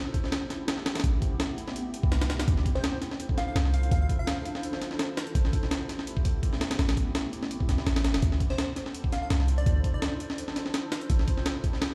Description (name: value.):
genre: drum and bass, jungle.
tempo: 167 BPM.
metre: 4/4.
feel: swing 54% on 16ths.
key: D minor.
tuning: A4 = 443 Hz.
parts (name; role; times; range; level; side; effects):
breakbeat sampler-style drum kit; drums; 0.1-11.9 s; hi-hat, kick drum, snare drum; -30 LUFS; equal; small room ambience.
long sustained 808-style bass; bass; 1.0-11.3 s; E1 to D2; -28 LUFS; equal; none.
plucky unison lead; melody; 2.8-4.5, 8.5-10.1 s; C5 to F5; -40 LUFS; equal; dub echo.
room: light reverb.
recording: played on a big sound system in a bare room, large studio reverb.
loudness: -28 LUFS.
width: mono.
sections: 0.0-11.9 A section.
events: none.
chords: 0.0 Am9; 2.5 Dm9; 5.4 Am9; 8.2 Dm9; 11.1 Am9.